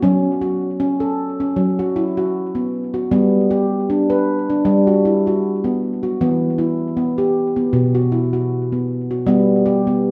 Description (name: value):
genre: world meditative, meditative tuned percussion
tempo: 78 BPM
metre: 4/4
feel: swing 54% on 16ths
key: unclear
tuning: A4 = 440 Hz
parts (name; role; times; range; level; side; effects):
- handpan; solo; 0.0-10.1 s; B2 to B4; -18 LUFS; equal; tape echo
room: wet echo chamber reverb, RT60 1.3 s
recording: dark, warm production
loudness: -18 LUFS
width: mono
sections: 0.0-9.3 A section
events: none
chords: 0.0 F#m; 3.1 G; 6.2 Em; 7.7 B5; 9.3 G